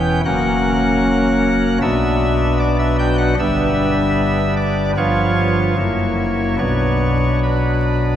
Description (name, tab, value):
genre	classical, chorale-style piece for pipe organ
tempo	76 BPM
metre	4/4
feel	rubato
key	B minor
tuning	A4 = 439 Hz
part	pipe organ, cornet	solo	0.0-8.2 s	E1 to G5	-14 LUFS	equal	none
room	wet church reverb, RT60 3.4 s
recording	minimal, uncompressed stereo recording, vinyl crackle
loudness	-14 LUFS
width	side -10 dB against mid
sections	0.0-8.2 A section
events	none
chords	0.2 F#; 1.8 Bm; 3.4 G; 5.0 G7; 5.8 F#7; 6.6 Bm